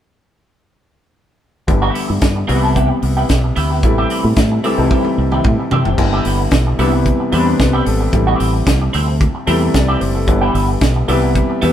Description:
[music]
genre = disco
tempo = 112 BPM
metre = 4/4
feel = straight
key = A minor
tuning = A4 = 440 Hz
[part]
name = clean electric guitar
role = accompaniment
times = 1.7-11.7 s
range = B3 to A4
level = -21 LUFS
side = right 2 dB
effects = wah
[part]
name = clear grand piano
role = accompaniment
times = 1.7-11.7 s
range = B2 to D5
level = -18 LUFS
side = left 2 dB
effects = none
[part]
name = fingered electric bass with an envelope filter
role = bass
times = 1.7-11.7 s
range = F#1 to C3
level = -17 LUFS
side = equal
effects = none
[part]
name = tight funk drum kit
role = drums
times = 1.7-11.7 s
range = crash cymbal, hi-hat, kick drum, snare drum, toms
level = -18 LUFS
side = equal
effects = none
[sound]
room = light reverb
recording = band playing live in one room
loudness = -12 LUFS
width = side -10 dB against mid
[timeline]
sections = 1.7-6.0 A section; 6.0-11.7 B section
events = drum fill 4.9-6.0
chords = 1.7 G6; 2.5 Cmaj7; 3.8 Am7; 6.0 G6; 6.8 Cmaj7; 8.1 Am7; 10.3 G6; 11.1 Cmaj7

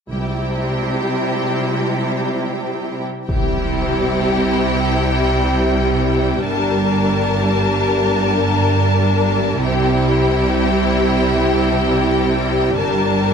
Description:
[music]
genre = cinematic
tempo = free time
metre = none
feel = none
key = unclear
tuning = A4 = 436 Hz
[part]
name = clear symphonic violin section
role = second line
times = 0.1-13.3 s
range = G4 to A5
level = -22 LUFS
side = left 4 dB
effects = none
[part]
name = rich symphonic viola section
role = accompaniment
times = 0.1-13.3 s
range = G3 to E4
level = -20 LUFS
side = right 1 dB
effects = none
[part]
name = clear studio cello section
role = bass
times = 0.1-13.3 s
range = G2 to C3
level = -21 LUFS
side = equal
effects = none
[part]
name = rich symphonic double bass section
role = bass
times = 0.1-13.3 s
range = G1 to C2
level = -22 LUFS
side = right 3 dB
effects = none
[part]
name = impact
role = sound effects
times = 3.3-6.5 s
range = none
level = -24 LUFS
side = equal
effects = none
[sound]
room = moderate scoring stage reverb, RT60 1.9 s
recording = none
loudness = -15 LUFS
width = side -6 dB against mid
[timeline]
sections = 0.1-3.3 A section; 3.3-13.3 B section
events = impact 3.3-6.4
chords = 0.1 C; 6.4 Gmadd9; 9.6 C; 12.8 Gmadd9

